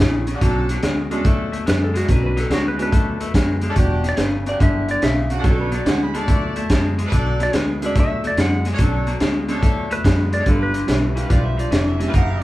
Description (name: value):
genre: electric blues shuffle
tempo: 143 BPM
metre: 4/4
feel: swing 67% on 8ths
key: B minor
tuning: A4 = 436 Hz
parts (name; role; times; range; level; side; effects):
- clean lap steel guitar; melody; 0.0-11.4 s; E4 to F#5; -25 LUFS; equal; none
- electric guitar through a small old amp; riff; 0.0-12.4 s; E2 to A3; -25 LUFS; left 2 dB; none
- fingered electric bass; bass; 0.0-12.4 s; E1 to F#2; -23 LUFS; equal; none
- crunchy breakbeat drum kit; drums; 0.0-12.3 s; hi-hat, kick drum, snare drum; -19 LUFS; equal; none
- clear horn section; stabs; 0.3-12.4 s; G3 to E5; -29 LUFS; equal; none
- reed electric piano; accompaniment; 0.4-12.1 s; G3 to A4; -28 LUFS; right 4 dB; none
- overdriven harmonica; second line; 5.3-7.0, 11.3-12.4 s; F#4 to B5; -30 LUFS; right 3 dB; none
room: light reverb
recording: band playing live in one room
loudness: -16 LUFS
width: side -16 dB against mid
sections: 0.0-12.4 A section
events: none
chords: 0.4 Bm9; 3.8 Em9; 5.4 Bm9; 10.5 G7